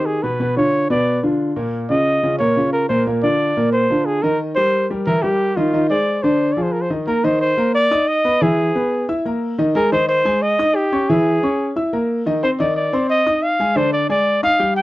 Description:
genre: jazz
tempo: 180 BPM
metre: 4/4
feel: straight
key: Eb major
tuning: A4 = 440 Hz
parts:
  - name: warm trumpet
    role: melody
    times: 0.0-14.8 s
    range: F4 to G5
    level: -18 LUFS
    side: equal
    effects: none
  - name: clear concert grand piano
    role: accompaniment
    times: 0.0-14.8 s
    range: Bb2 to Fb6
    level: -18 LUFS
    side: equal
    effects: none
room: light reverb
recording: dry, close 1970s-style studio recording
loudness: -15 LUFS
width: side -17 dB against mid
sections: 0.0-7.1 A section; 7.1-14.8 B section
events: none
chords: 0.4 Db13b9; 1.7 Bbmadd11; 3.1 Bbadd9; 4.4 Eb; 5.1 Ebadd9; 5.7 Dm7b5; 7.1 Eb5; 8.4 E; 9.1 Eb5; 9.8 Abmaj7; 11.1 Dbm69; 12.4 Fm7; 13.8 Csus2/D

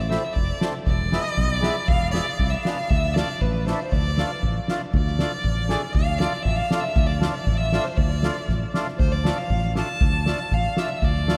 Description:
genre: klezmer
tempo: 118 BPM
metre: 4/4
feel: straight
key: D dorian sharp4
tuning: A4 = 440 Hz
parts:
  - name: rich violin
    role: melody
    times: 0.0-11.4 s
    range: B4 to A5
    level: -30 LUFS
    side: equal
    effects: none
  - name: fretless electric bass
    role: bass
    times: 0.0-11.3 s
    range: E1 to D2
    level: -27 LUFS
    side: equal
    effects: none
  - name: accordion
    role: accompaniment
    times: 0.1-11.4 s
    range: G#3 to G#4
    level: -32 LUFS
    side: equal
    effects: none
  - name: soft-mallet drum kit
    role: drums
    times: 0.1-11.4 s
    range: kick drum, snare drum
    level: -27 LUFS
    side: equal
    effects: none
room: moderate cathedral reverb, RT60 6.5 s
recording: in a vast, echoing space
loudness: -23 LUFS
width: mono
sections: 0.0-4.9 A section; 4.9-11.4 A section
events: none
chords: 0.0 Am; 0.9 E; 2.9 Dm

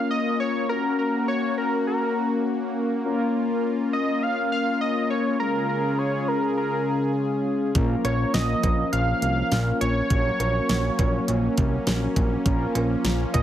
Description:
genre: synth-pop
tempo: 102 BPM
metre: 4/4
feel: straight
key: Bb minor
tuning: A4 = 440 Hz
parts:
  - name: octave-doubled lead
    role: melody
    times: 0.0-13.4 s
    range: Bb4 to F5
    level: -26 LUFS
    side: right 1 dB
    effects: chorus, slapback echo
  - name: mellow synth brass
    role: accompaniment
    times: 0.0-13.4 s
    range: Ab3 to Bb4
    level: -27 LUFS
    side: left 3 dB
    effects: chorus
  - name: warm analog pad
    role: sustained chords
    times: 0.0-13.4 s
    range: Db3 to Ab4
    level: -28 LUFS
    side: equal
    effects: chorus
  - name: fat analog bass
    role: bass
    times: 7.8-13.4 s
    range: Bb1 to C2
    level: -25 LUFS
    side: equal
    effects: none
  - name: pop drum kit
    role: drums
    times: 7.8-13.4 s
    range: cowbell, hi-hat, kick drum, snare drum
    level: -25 LUFS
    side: equal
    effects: none
room: light reverb, digital ambience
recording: heavily compressed radio sound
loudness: -21 LUFS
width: side -11 dB against mid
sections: 0.0-13.4 A section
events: none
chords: 0.0 Bbm; 0.7 Gb/Bb; 3.0 Bbm; 5.4 Db; 7.8 Bbm; 10.1 Gb/Bb; 12.5 Bbm

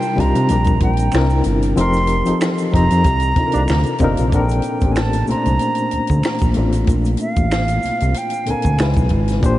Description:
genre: R&B, neo-soul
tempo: 94 BPM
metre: 4/4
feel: swing 55% on 16ths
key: unclear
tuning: A4 = 440 Hz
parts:
  - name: reedy concert flute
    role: melody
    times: 0.0-9.1 s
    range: F5 to C6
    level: -22 LUFS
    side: right 2 dB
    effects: none
  - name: reed electric piano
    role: accompaniment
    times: 0.0-9.6 s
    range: Bb2 to C5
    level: -20 LUFS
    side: left 2 dB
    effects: fast tremolo
  - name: compact cocktail drum kit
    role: drums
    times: 0.0-9.6 s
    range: finger snaps, hi-hat, kick drum, snare drum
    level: -22 LUFS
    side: equal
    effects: none
  - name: tube shaker and finger snaps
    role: percussion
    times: 0.0-9.6 s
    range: none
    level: -39 LUFS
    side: right 4 dB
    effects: none
  - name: fat analog bass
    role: bass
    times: 0.2-9.6 s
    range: F1 to C3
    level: -17 LUFS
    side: equal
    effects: none
  - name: warm trombone section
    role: stabs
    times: 3.5-4.2 s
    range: G3 to Eb4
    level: -29 LUFS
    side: right 3 dB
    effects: tape echo
room: moderate huge ambient reverb, RT60 4.1 s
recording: dreamy mix soaked in reverb, vinyl crackle, nothing above 10.9 kHz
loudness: -14 LUFS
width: side -15 dB against mid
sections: 0.0-4.3 A section; 4.3-9.6 B section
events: band accent 1.8-4.3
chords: 0.5 Bb69; 1.1 C9; 1.8 F9sus4; 3.0 Cm11; 4.3 Bbmaj9; 8.8 Dbm7

